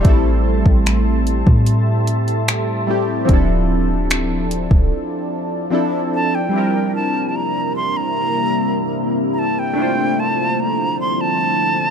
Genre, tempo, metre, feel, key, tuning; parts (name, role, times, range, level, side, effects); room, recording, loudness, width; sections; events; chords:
contemporary R&B; 74 BPM; 4/4; straight; D minor; A4 = 441 Hz
warm analog keys; accompaniment; 0.0-11.9 s; F3 to C5; -20 LUFS; equal; chorus, phaser
deep dark ambient pad; sustained chords; 0.0-11.9 s; C3 to C6; -23 LUFS; left 1 dB; chorus, built-in reverb, sidechain pumping
warm 808-style bass; bass; 0.0-4.9 s; D1 to A2; -18 LUFS; equal
smooth R&B drum kit; drums; 0.0-4.9 s; finger snaps, hi-hat, kick drum; -15 LUFS; equal; overdrive
jazz flute; melody; 6.1-11.9 s; G5 to C6; -20 LUFS; right 2 dB; tape echo
digital ambience; dark, warm production; -15 LUFS; side -7 dB against mid
0.0-6.5 A section; 6.5-11.9 B section
break 4.9-6.5
0.0 Am7; 3.3 Dm7; 6.5 C7; 9.8 Dm7